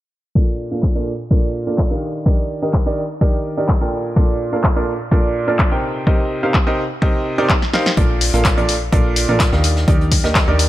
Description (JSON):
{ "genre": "piano house", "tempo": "126 BPM", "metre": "4/4", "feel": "straight", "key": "Bb major", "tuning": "A4 = 439 Hz", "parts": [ { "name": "bright baby grand piano", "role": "riff", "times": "0.4-10.6 s", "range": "Bb2 to G5", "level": "-19 LUFS", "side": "right 1 dB", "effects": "sidechain pumping, low-pass filter, ping-pong delay" }, { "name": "electronic kick drum", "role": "drums", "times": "0.4-10.5 s", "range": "none", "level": "-16 LUFS", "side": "equal", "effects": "overdrive, studio reverb" }, { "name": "house drum kit", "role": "drums", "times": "0.8-10.7 s", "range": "handclaps, hi-hat, snare drum", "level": "-22 LUFS", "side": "left 1 dB", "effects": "studio reverb" }, { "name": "plucky analog bass", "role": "bass", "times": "8.0-10.7 s", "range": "Bb1 to Eb2", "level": "-18 LUFS", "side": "equal", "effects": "sidechain pumping" }, { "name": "vintage brush drum kit", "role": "drums", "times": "8.0-10.7 s", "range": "hi-hat, snare drum", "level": "-28 LUFS", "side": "left 2 dB", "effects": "high-pass filter on hats, studio reverb, high-pass filter on snare, high-pass filter on room" } ], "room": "small room ambience", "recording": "low-pass filter", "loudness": "-15 LUFS", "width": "side -15 dB against mid", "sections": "0.4-8.0 A section; 8.0-10.7 B section", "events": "filter sweep on grand piano 0.4-8.0; filter sweep 0.4-8.0; drum fill 7.6-8.0", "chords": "0.4 Bbmaj7; 5.8 Cm7; 8.0 Bbmaj7" }